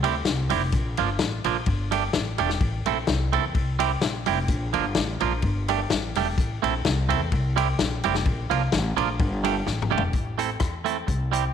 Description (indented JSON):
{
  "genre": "ska",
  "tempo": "128 BPM",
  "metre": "4/4",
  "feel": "straight",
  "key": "A phrygian",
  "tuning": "A4 = 440 Hz",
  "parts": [
    { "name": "clean electric guitar", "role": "accompaniment", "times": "0.0-11.4 s", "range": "F3 to A4", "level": "-26 LUFS", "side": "right 10 dB", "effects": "none" },
    { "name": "upright bass", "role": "bass", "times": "0.0-11.5 s", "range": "E1 to E2", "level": "-27 LUFS", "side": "left 1 dB", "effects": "none" },
    { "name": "vintage drum kit", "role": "drums", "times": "0.0-11.4 s", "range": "hi-hat, kick drum, ride cymbal, rim click, snare drum, toms", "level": "-27 LUFS", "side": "left 4 dB", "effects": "none" }
  ],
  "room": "light reverb, small room ambience",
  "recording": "1960s-style stereo",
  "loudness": "-22 LUFS",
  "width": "side -8 dB against mid",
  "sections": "0.0-10.1 A section; 10.1-11.5 B section",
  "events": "drum fill 9.7-10.1",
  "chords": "0.0 C; 0.7 Bb; 1.7 Gsus2; 2.6 Am; 3.6 C; 4.5 Bb; 5.4 Gsus2; 6.4 Am; 7.3 C; 8.3 Bb; 9.2 Gsus2; 10.1 Am"
}